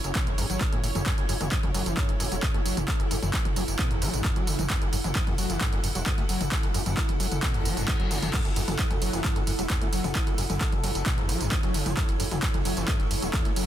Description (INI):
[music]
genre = driving peak-time techno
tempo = 132 BPM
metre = 4/4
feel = straight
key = F# minor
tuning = A4 = 441 Hz
[part]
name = gritty driven synth bass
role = bass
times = 0.0-13.6 s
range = E1 to G#1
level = -32 LUFS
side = equal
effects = sidechain pumping
[part]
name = punchy analog drum machine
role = drums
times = 0.0-13.7 s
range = crash cymbal, handclaps, hi-hat, ride cymbal, tambourine, toms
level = -30 LUFS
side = equal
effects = overdrive, sidechain pumping on hats, sidechain pumping on perc, sidechain pumping on cymbals, sidechain pumping on toms
[part]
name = granular cloud pad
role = texture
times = 0.0-13.7 s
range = E4 to F#5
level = -33 LUFS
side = right 1 dB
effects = built-in reverb, sidechain pumping
[part]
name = screaming distorted acid line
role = riff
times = 0.2-13.7 s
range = E2 to A3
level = -33 LUFS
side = equal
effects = distortion, ensemble chorus, sidechain pumping, dub echo
[part]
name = electronic kick drum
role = drums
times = 0.2-13.4 s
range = none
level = -27 LUFS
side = equal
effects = none
[part]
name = reverse cymbal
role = sound effects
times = 7.6-8.3 s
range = none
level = -39 LUFS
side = left 6 dB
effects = none
[sound]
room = little or no reverb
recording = dense, heavily limited modern master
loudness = -24 LUFS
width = side -11 dB against mid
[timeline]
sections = 0.0-13.7 A section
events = reverse cymbal 7.6-8.3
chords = 0.0 F#m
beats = 0.15 0.61 | 1.06 1.52 1.97 2.43 | 2.88 3.34 3.79 4.25 | 4.70 5.15 5.61 6.06 | 6.52 6.97 7.43 7.88 | 8.34 8.79 9.24 9.70 | 10.15 10.61 11.06 11.52 | 11.97 12.43 12.88 13.34